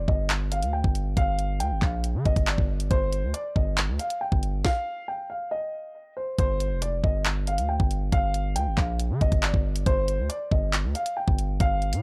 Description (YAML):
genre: hip hop, drill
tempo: 138 BPM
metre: 4/4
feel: half-time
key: G minor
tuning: A4 = 440 Hz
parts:
  - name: dark concert grand piano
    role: melody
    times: 0.0-12.0 s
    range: C5 to G5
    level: -32 LUFS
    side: equal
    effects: low-pass filter
  - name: distorted 808-style bass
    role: bass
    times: 0.0-12.0 s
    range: F1 to D3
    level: -29 LUFS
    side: equal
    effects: distortion
  - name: drill drum kit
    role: drums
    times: 0.1-12.0 s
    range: handclaps, hi-hat, kick drum, snare drum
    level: -27 LUFS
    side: equal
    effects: none
room: little or no reverb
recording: dry, gritty hardware recording, transformer saturation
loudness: -26 LUFS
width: mono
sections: 0.0-6.4 A section; 6.4-12.0 B section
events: stop 4.6-6.4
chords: 0.0 G5; 2.9 Ebadd9/G; 6.4 G5; 9.9 G7(no3)